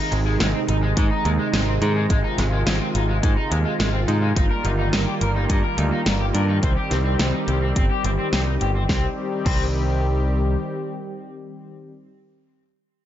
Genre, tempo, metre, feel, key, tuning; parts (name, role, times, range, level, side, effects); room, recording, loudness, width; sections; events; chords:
synthwave; 106 BPM; 4/4; straight; C minor; A4 = 440 Hz
warm analog pad; sustained chords; 0.0-11.9 s; C3 to G4; -26 LUFS; right 1 dB; chorus, tremolo, vintage 12-bit sampler grit, sidechain pumping
raw garage guitar; riff; 0.0-9.6 s; Ab3 to Bb4; -28 LUFS; left 2 dB; overdrive, lush chorus, low-pass filter, ping-pong delay
modern bright picked electric bass; bass; 0.1-10.6 s; G1 to Ab2; -22 LUFS; equal; low-pass filter
pop drum kit; drums; 0.1-9.6 s; crash cymbal, hi-hat, snare drum; -27 LUFS; equal; small room ambience
electronic kick drum; drums; 1.0-9.6 s; -22 LUFS; equal; small room ambience
light reverb; nothing above 7.6 kHz; -19 LUFS; side -11 dB against mid
0.0-8.9 A section; 8.9-11.2 B section
filter sweep on picked electric bass 0.0-8.9
0.0 Ab; 4.4 Ebadd9/G; 6.6 Cm